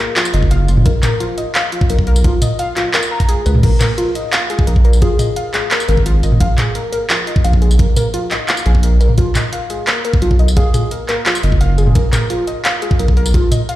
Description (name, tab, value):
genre	half-time drum and bass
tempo	173 BPM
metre	4/4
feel	half-time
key	unclear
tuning	A4 = 441 Hz
part	warbly dusty pluck	arpeggios	0.0-13.8 s	F4 to Bb5	-20 LUFS	left 1 dB	chorus, tape echo
part	drum and bass drum kit	drums	0.2-13.8 s	crash cymbal, handclaps, hi-hat, tambourine, toms	-18 LUFS	equal	overdrive
part	saturated sub bass	bass	0.3-13.4 s	F#1 to C#2	-12 LUFS	equal	tube saturation
part	electronic kick drum	drums	0.4-13.4 s	none	-14 LUFS	equal	none
part	soft struck synth lead	melody	5.0-5.4, 10.6-10.9 s	Ab4	-28 LUFS	left 3 dB	chorus, tape echo
room	light reverb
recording	played on a big sound system in a bare room, large studio reverb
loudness	-12 LUFS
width	side -15 dB against mid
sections	0.0-13.8 A section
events	none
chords	0.0 B; 3.6 Bb5; 9.2 B